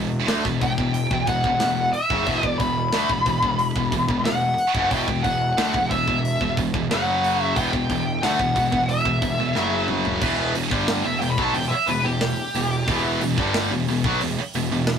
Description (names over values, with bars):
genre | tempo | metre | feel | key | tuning
heavy metal | 90 BPM | 4/4 | straight | E minor | A4 = 440 Hz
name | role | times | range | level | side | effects
distorted electric guitar | riff | 0.0-15.0 s | E2 to A3 | -27 LUFS | left 6 dB | overdrive
heavy high-gain guitar | riff | 0.0-15.0 s | E2 to A3 | -26 LUFS | right 6 dB | distortion
fuzz picked electric bass | bass | 0.0-15.0 s | E1 to D2 | -28 LUFS | equal | overdrive
tight metal drum kit | drums | 0.3-15.0 s | crash cymbal, hi-hat, kick drum, snare drum, toms | -28 LUFS | right 1 dB | none
high-gain lead guitar | melody | 0.6-13.0 s | G4 to B5 | -23 LUFS | left 1 dB | distortion
room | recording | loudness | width
light reverb | rough rehearsal-room recording, tube saturation | -19 LUFS | side -7 dB against mid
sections
0.0-10.2 A section; 10.2-15.0 B section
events
drum fill 9.6-10.2; lead electric guitar solo 10.2-15.0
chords
0.0 E5; 6.9 F#5; 7.6 Em; 9.6 F#5; 10.2 Em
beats
0.29 0.95 1.61 | 2.28 2.94 3.60 4.26 | 4.92 5.58 6.24 6.91 | 7.57 8.23 8.90 9.56 | 10.22 10.89 11.55 12.22 | 12.88 13.54 14.21 14.87